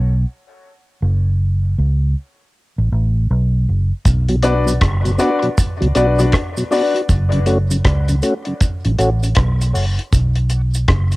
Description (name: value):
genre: dub reggae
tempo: 79 BPM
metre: 4/4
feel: swing 63% on 16ths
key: B minor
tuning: A4 = 440 Hz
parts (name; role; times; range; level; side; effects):
- vintage muted fingered electric bass; bass; 0.0-11.2 s; F#1 to C#2; -15 LUFS; equal; none
- deep reggae drum kit; drums; 4.1-11.2 s; hi-hat, kick drum, rim click; -18 LUFS; equal; cassette tape
- cabasa; percussion; 4.1-11.2 s; none; -31 LUFS; right 6 dB; high-pass filter on perc
- mellow tonewheel organ; accompaniment; 4.3-11.2 s; F#2 to F#4; -20 LUFS; equal; chorus vibrato, slow rotary speaker, high-pass filter, cassette tape
- warm grand piano; stabs; 4.4-7.0 s; D4 to D5; -20 LUFS; left 3 dB; cassette tape, dub echo
room: little or no reverb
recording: home recording on cassette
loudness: -14 LUFS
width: side -20 dB against mid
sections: 0.0-11.2 A section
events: break 0.0-4.1; filter sweep 7.1-11.2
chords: 0.0 B5; 1.0 F#m; 4.1 Bm; 7.1 F#m; 10.1 Bm